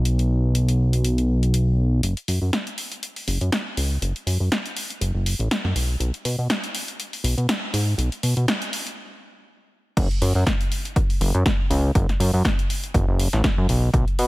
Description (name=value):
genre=nu-disco, nu disco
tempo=121 BPM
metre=4/4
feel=swing 55% on 16ths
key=unclear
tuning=A4 = 440 Hz
part: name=fat analog bass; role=bass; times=0.0-14.3 s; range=F#1 to B2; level=-20 LUFS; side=equal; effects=none
part: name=house drum kit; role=drums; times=0.1-14.3 s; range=crash cymbal, hi-hat, snare drum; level=-26 LUFS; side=equal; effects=none
part: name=electronic kick drum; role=drums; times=10.0-14.0 s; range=none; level=-22 LUFS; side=equal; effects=none
room=little or no reverb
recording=none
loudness=-20 LUFS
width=side -20 dB against mid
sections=0.0-2.0 A section; 2.0-10.0 B section; 10.0-14.3 C section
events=build-up 2.0-10.0; stop 9.0-10.0; drop 10.0-14.3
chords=none